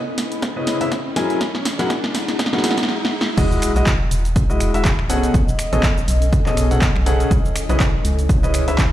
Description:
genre	piano house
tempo	122 BPM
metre	4/4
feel	swing 56% on 16ths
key	E major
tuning	A4 = 440 Hz
part	riser and sub drop	sound effects	0.0-5.3 s	none	-28 LUFS	right 1 dB	none
part	granular cloud pad	texture	0.0-8.9 s	C#4 to B5	-29 LUFS	left 1 dB	built-in reverb, sidechain pumping
part	organ-like FM bass	bass	0.2-8.9 s	E1 to C#2	-19 LUFS	equal	sidechain pumping, high-pass filter
part	punchy analog drum machine	drums	0.2-8.9 s	crash cymbal, finger snaps, handclaps, hi-hat, shaker, snare drum	-23 LUFS	equal	none
part	electronic kick drum	drums	0.4-8.9 s	none	-19 LUFS	equal	overdrive, high-pass filter on kick, high-pass filter on room
part	warm baby grand piano	riff	0.6-8.8 s	B2 to G#5	-23 LUFS	left 1 dB	sidechain pumping, low-pass filter, ping-pong delay
room	light reverb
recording	played on a big sound system in a bare room, large studio reverb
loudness	-16 LUFS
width	side -13 dB against mid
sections	0.0-3.4 A section; 3.4-8.9 B section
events	build-up 0.0-3.4; drum fill 0.0-2.9, 2.9-3.4; riser 0.0-3.4; stop 2.9-3.4; drop 3.4-8.9; impact 3.4-5.3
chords	0.0 C#m9; 1.2 F#9; 3.4 Emaj9; 5.1 B13; 7.3 C#m9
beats	0.42 0.92 | 1.41 1.90 2.39 2.88 | 3.38 3.87 4.36 4.85 | 5.34 5.83 6.33 6.82 | 7.31 7.80 8.29 8.79

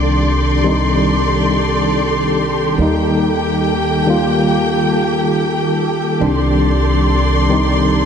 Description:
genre	trip hop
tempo	70 BPM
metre	4/4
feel	swing 54% on 16ths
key	unclear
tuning	A4 = 440 Hz
part	tine electric piano	accompaniment	0.0-8.1 s	Eb3 to F4	-16 LUFS	left 1 dB	medium stereo tremolo, tape echo
part	clear studio string section	sustained chords	0.0-8.1 s	Bb3 to C6	-19 LUFS	left 1 dB	vintage 12-bit sampler grit, low-pass filter
part	upright bass	bass	0.0-8.1 s	C2 to Eb2	-20 LUFS	equal	none
part	flickering grainy texture	texture	0.0-8.1 s	A4	-22 LUFS	right 1 dB	built-in reverb
room	wet plate reverb, RT60 3.7 s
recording	dreamy mix soaked in reverb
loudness	-13 LUFS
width	side -7 dB against mid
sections	0.0-8.1 A section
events	none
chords	0.0 Cmadd9; 2.8 Eb; 6.2 Cmadd9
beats	0.21 1.07 1.93 | 2.78 3.64 4.50 5.36 | 6.21 7.07 7.93

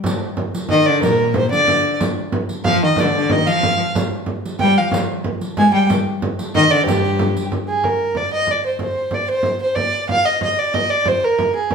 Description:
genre	medieval dance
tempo	124 BPM (dotted quarters)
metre	6/8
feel	straight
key	unclear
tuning	A4 = 440 Hz
part	frame drum	percussion	0.0-11.7 s	none	-24 LUFS	right 2 dB	none
part	riq	percussion	0.1-7.5 s	none	-26 LUFS	right 1 dB	none
part	dark fiddle	melody	0.7-11.7 s	G4 to Ab5	-17 LUFS	right 2 dB	none
part	rich viola da gamba	second line	0.7-7.5 s	G2 to Ab3	-20 LUFS	left 4 dB	none
room	wet large studio reverb, RT60 1.0 s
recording	band playing live in one room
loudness	-15 LUFS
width	side -6 dB against mid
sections	0.0-7.8 A section; 7.8-11.7 B section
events	none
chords	none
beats	| 0.05 0.54 | 1.02 1.51 | 2.00 2.49 | 2.98 3.46 | 3.95 4.44 | 4.92 5.41 | 5.90 6.38 | 6.87 7.35 | 7.84 8.32 | 8.81 9.29 | 9.77 10.26 | 10.74 11.22 | 11.70

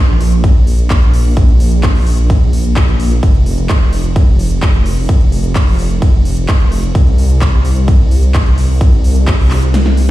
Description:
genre	EDM, festival progressive house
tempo	129 BPM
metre	4/4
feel	straight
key	unclear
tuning	A4 = 441 Hz
part	wide detuned saw bass	bass	0.0-10.1 s	F1 to C2	-12 LUFS	equal	chorus, tube saturation, sidechain pumping
part	big-room dance drum kit	drums	0.2-10.1 s	handclaps, hi-hat, ride cymbal, snare drum	-22 LUFS	equal	none
part	electronic kick drum	drums	0.4-9.4 s	none	-10 LUFS	equal	none
room	little or no reverb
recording	played on a big sound system in a bare room, stone room reverb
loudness	-9 LUFS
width	side -15 dB against mid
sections	0.0-10.1 A section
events	kick drops out 9.7-10.1; drum fill 9.7-10.1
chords	none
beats	0.44 0.90 | 1.37 1.83 2.30 2.76 | 3.23 3.69 4.16 4.62 | 5.09 5.55 6.02 6.49 | 6.95 7.42 7.88 8.35 | 8.81 9.28 9.74

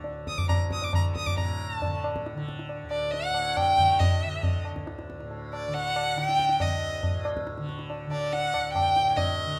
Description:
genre	indian classical, Hindustani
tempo	138 BPM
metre	3/4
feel	straight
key	D raga bhairav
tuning	A4 = 440 Hz
part	tanpura	drone	0.0-9.6 s	D2 to D3	-38 LUFS	equal	none
part	tabla	percussion	0.0-9.3 s	none	-32 LUFS	equal	none
part	rich violin	melody	0.3-9.6 s	D5 to Eb6	-28 LUFS	equal	none
room	moderate recital hall reverb, RT60 1.4 s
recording	none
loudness	-27 LUFS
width	mono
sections	0.0-1.4 A section; 1.4-9.6 B section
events	speeding up 0.0-9.6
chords	none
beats	| 0.05 0.49 0.93 | 1.37 1.81 2.25 | 2.69 3.13 3.57 | 4.00 4.44 4.87 | 5.31 5.74 6.17 | 6.61 7.04 7.47 | 7.90 8.33 8.76 | 9.19

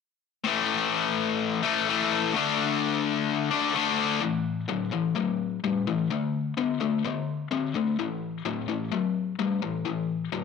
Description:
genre	rock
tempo	128 BPM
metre	4/4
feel	straight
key	unclear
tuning	A4 = 440 Hz
part	cranked stack guitar	solo	0.4-10.4 s	A2 to D4	-25 LUFS	left 6 dB	overdrive
room	wet spring reverb, RT60 1.3 s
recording	none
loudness	-25 LUFS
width	side -5 dB against mid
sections	0.5-4.2 A section; 4.2-10.4 B section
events	none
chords	0.5 A5; 2.3 D5; 4.2 A5; 6.1 D5; 8.0 A5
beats	| 0.46 0.93 1.40 1.88 | 2.35 2.82 3.29 3.76 | 4.23 4.70 5.17 5.64 | 6.11 6.58 7.05 7.52 | 7.99 8.46 8.92 9.39 | 9.86 10.33

